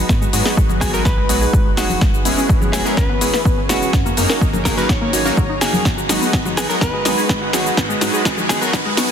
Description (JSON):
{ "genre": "progressive house", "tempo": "125 BPM", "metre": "4/4", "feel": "straight", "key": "G# minor", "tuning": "A4 = 439 Hz", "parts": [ { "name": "lush unison pad", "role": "sustained chords", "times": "0.0-9.1 s", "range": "E3 to A#5", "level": "-26 LUFS", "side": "right 2 dB", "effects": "chorus, sidechain pumping" }, { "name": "glassy wavetable pluck", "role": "arpeggios", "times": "0.0-9.0 s", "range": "F#3 to C#5", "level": "-24 LUFS", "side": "left 1 dB", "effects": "chorus, sidechain pumping, digital delay" }, { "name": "saturated sub bass", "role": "bass", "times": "0.0-9.1 s", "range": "D#1 to G#2", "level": "-28 LUFS", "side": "equal", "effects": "sidechain pumping" }, { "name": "electronic kick drum", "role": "drums", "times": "0.1-8.8 s", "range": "none", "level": "-18 LUFS", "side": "equal", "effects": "none" }, { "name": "house drum kit", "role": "drums", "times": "0.1-9.1 s", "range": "hi-hat, shaker, snare drum", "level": "-21 LUFS", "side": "left 1 dB", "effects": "high-pass filter on snare, high-pass filter on perc, high-pass filter on hats" }, { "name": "supersaw stab", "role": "stabs", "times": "0.3-9.0 s", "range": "F#3 to C#5", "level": "-23 LUFS", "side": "equal", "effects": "sidechain pumping, digital delay" }, { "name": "congas", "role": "percussion", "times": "0.7-8.5 s", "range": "none", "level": "-26 LUFS", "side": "left 4 dB", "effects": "sidechain pumping on perc" }, { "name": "direct-recorded clean electric guitar", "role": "melody", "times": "0.8-9.1 s", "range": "F#4 to C#5", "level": "-24 LUFS", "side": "equal", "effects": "digital delay" }, { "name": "riser", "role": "sound effects", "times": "6.9-9.1 s", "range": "none", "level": "-28 LUFS", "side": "equal", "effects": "none" } ], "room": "light reverb, digital ambience", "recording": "dense, heavily limited modern master, high-pass filter", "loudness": "-14 LUFS", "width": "side -8 dB against mid", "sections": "0.0-9.1 A section", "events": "build-up 0.0-9.1; drum fill 0.0-9.1; filter sweep on synth arpeggio sound 0.0-9.1; filter sweep 0.0-9.1; riser 6.9-9.1", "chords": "0.0 G#m7; 2.0 E6; 3.9 F#6; 5.9 G#m7", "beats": "| 0.09 0.57 1.05 1.53 | 2.01 2.49 2.97 3.45 | 3.93 4.41 4.89 5.37 | 5.85 6.33 6.81 7.29 | 7.77 8.25 8.73" }